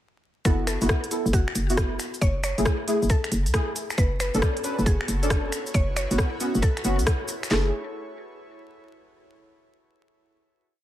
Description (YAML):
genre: UK garage, two-step garage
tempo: 136 BPM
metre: 4/4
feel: swing 66% on 16ths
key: F# minor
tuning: A4 = 439 Hz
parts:
  - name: deep mellow chord stab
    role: stabs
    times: 0.4-7.7 s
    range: A3 to B4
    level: -29 LUFS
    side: equal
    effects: ensemble chorus, cassette tape, ping-pong delay
  - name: mallet-like synth pluck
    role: melody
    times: 0.5-7.7 s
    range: F#4 to C#5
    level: -33 LUFS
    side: left 1 dB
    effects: chorus, ping-pong delay
  - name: hollow knocking FM bass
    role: bass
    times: 0.5-7.7 s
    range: F#1 to C#2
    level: -25 LUFS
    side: equal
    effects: sidechain pumping
  - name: garage drum kit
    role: drums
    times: 0.5-7.6 s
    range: handclaps, kick drum, snare drum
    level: -24 LUFS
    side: equal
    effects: none
  - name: garage drum kit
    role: drums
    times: 0.5-7.5 s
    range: finger snaps, hi-hat, rim click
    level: -30 LUFS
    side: equal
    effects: none
  - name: cabasa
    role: percussion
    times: 0.5-7.5 s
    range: none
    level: -37 LUFS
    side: left 4 dB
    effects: none
  - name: airy breathy pad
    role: sustained chords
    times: 4.0-7.7 s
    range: B3 to C#5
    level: -39 LUFS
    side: equal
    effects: chorus, sidechain pumping
room: little or no reverb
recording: vinyl crackle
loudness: -22 LUFS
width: side -13 dB against mid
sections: 0.5-7.5 drop; 7.5-9.3 final chord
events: drop 0.5-7.5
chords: 0.5 F#7sus4; 2.0 F#m9; 4.0 Bm9/F#; 5.5 F#7sus4; 7.5 F#m9 (rootless)